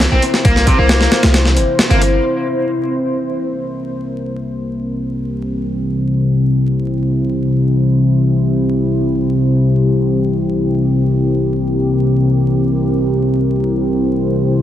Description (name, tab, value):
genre	breakbeat, breaks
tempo	free time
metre	none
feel	none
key	unclear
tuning	A4 = 441 Hz
part	deep dark ambient pad	sustained chords	0.1-14.6 s	C3 to C5	-14 LUFS	left 1 dB	chorus, built-in reverb, vintage 12-bit sampler grit, sidechain pumping
part	biting overdriven guitar	riff	0.0-2.0 s	C3 to C4	-19 LUFS	equal	tube saturation, dub echo
part	warm 808-style bass	bass	0.0-2.2 s	G1 to C2	-14 LUFS	equal	tube saturation
part	breakbeat sampler-style drum kit	drums	0.0-2.1 s	hi-hat, kick drum, snare drum	-14 LUFS	equal	overdrive
room	moderate digital room reverb, RT60 1.0 s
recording	heavily compressed radio sound, multiband compression, vinyl crackle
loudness	-13 LUFS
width	side -11 dB against mid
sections	0.0-2.2 A section; 2.2-14.6 B section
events	filter sweep on ambient pad 2.2-14.6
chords	0.0 C7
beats	free time